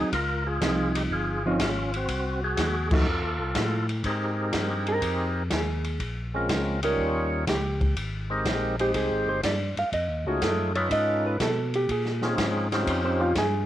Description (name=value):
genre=soul jazz organ trio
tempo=122 BPM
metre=4/4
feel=swing 69% on 8ths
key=unclear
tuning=A4 = 442 Hz
part: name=percussive tonewheel organ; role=melody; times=0.0-13.3 s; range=G3 to Db5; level=-28 LUFS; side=left 1 dB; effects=slow rotary speaker, cassette tape
part: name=hollow-body jazz guitar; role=accompaniment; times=0.0-13.7 s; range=F3 to Ab5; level=-28 LUFS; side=right 2 dB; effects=cassette tape
part: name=tonewheel organ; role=bass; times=0.0-13.7 s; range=G1 to B2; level=-30 LUFS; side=equal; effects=overdrive, chorus vibrato, slow rotary speaker
part: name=open jazz drum kit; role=drums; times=0.1-13.5 s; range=crash cymbal, hi-hat, kick drum, ride cymbal, snare drum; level=-30 LUFS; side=equal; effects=cassette tape
room=light reverb, small room ambience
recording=home recording on cassette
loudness=-24 LUFS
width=side -12 dB against mid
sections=0.0-4.0 A section; 4.0-13.7 B section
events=band accent 2.8; hollow-body jazz guitar solo 4.0-13.7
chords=0.1 Dbmaj9; 2.1 Cdim; 3.1 F7; 4.0 Fm11; 6.0 Bbm7; 7.0 Eb7; 8.0 Abmaj9; 9.9 F7alt; 11.9 Bbm11